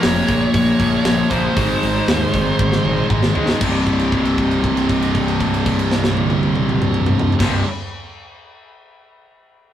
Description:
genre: heavy metal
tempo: 117 BPM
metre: 4/4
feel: straight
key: C phrygian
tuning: A4 = 441 Hz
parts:
  - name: high-gain lead guitar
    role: melody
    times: 0.0-3.1 s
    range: C5 to Db5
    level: -22 LUFS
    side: right 3 dB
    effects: distortion
  - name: distorted electric guitar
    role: riff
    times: 0.0-7.6 s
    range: C2 to Bb3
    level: -19 LUFS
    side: left 3 dB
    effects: distortion
  - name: heavy high-gain guitar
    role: riff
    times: 0.0-7.6 s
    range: C2 to Bb3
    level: -23 LUFS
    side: right 5 dB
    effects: distortion
  - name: fuzz picked electric bass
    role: bass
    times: 0.0-7.6 s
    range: C1 to Eb2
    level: -23 LUFS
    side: equal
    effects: overdrive
  - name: tight metal drum kit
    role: drums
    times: 0.0-7.5 s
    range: crash cymbal, hi-hat, kick drum, snare drum, toms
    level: -20 LUFS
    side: right 1 dB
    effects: none
room: moderate stone room reverb, RT60 1.0 s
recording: rough rehearsal-room recording, warm saturation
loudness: -15 LUFS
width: side -10 dB against mid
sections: 0.0-3.6 A section; 3.6-7.7 B section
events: drum fill 2.6-3.6; held note 3.6-7.4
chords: 0.0 Bbm; 1.6 Ab; 3.6 C5

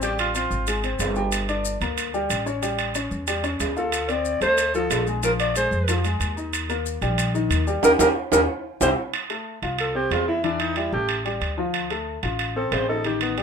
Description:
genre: Afro-Cuban jazz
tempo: 184 BPM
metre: 4/4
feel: straight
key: unclear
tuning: A4 = 445 Hz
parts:
  - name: growling alto saxophone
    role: melody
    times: 0.0-0.8, 3.8-13.4 s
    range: B3 to D5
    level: -22 LUFS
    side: equal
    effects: none
  - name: warm baby grand piano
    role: accompaniment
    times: 0.0-13.4 s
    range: Eb3 to G5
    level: -27 LUFS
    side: left 3 dB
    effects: none
  - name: upright bass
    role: bass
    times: 0.0-13.4 s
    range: G1 to F2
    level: -28 LUFS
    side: equal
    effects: none
  - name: maracas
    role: percussion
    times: 0.0-8.9 s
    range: none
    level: -32 LUFS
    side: left 8 dB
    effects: none
  - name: timbales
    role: percussion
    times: 0.0-13.4 s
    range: none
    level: -27 LUFS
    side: right 5 dB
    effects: none
room: moderate studio reverb, RT60 0.5 s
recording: minimal, uncompressed stereo recording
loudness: -21 LUFS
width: side -6 dB against mid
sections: 0.0-9.1 A section; 9.1-13.4 B section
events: band accent 7.8-9.1; alto saxophone solo 9.1-13.4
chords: 0.0 Fadd9; 0.7 G#; 1.3 Gmadd9; 2.6 A7; 3.9 Dm7; 5.2 Bbsus2; 6.5 Eb; 7.8 Eb7; 8.5 C; 9.1 Fmaj7; 10.4 A7sus4; 11.1 Dmadd11/A; 11.7 Dm7

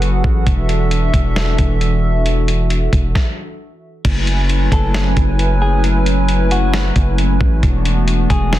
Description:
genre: hip hop, atmospheric cloud-rap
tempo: 134 BPM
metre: 4/4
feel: half-time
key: F# minor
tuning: A4 = 439 Hz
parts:
  - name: hollow soft pad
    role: sustained chords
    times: 0.0-8.6 s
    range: E3 to G#5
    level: -20 LUFS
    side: equal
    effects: chorus, sidechain pumping
  - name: long sustained 808-style bass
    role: bass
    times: 0.0-8.6 s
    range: E1 to A1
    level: -16 LUFS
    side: equal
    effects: none
  - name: lo-fi sampler-style drum kit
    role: drums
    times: 0.0-8.6 s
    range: crash cymbal, hi-hat, kick drum, snare drum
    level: -18 LUFS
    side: equal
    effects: none
  - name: semi-hollow electric guitar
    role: melody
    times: 4.7-8.6 s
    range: F#4 to A4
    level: -24 LUFS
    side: left 3 dB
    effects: low-pass filter, tape echo
room: little or no reverb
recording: dense, heavily limited modern master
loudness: -13 LUFS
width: side -14 dB against mid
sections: 0.0-4.0 A section; 4.0-8.6 B section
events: stop 3.2-4.0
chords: 0.5 E9sus4; 4.0 F#m11; 7.6 E9sus4

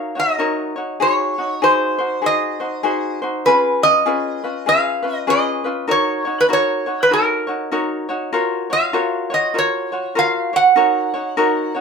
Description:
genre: Hawaiian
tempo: 98 BPM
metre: 4/4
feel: swing 61% on 8ths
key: unclear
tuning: A4 = 437 Hz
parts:
  - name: metal-body resonator slide guitar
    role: melody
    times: 0.0-11.7 s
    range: A#4 to F#5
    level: -17 LUFS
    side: right 2 dB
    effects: none
  - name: ukulele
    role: accompaniment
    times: 0.0-11.8 s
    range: C#4 to C#5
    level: -20 LUFS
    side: left 2 dB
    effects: none
room: moderate studio reverb, RT60 0.5 s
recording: band playing live in one room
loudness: -16 LUFS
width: side -5 dB against mid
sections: 0.0-11.8 A section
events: none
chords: 0.0 D#m7; 1.0 G#7; 3.5 C#7; 5.9 D#m7; 8.3 F#maj7; 10.8 D#m7

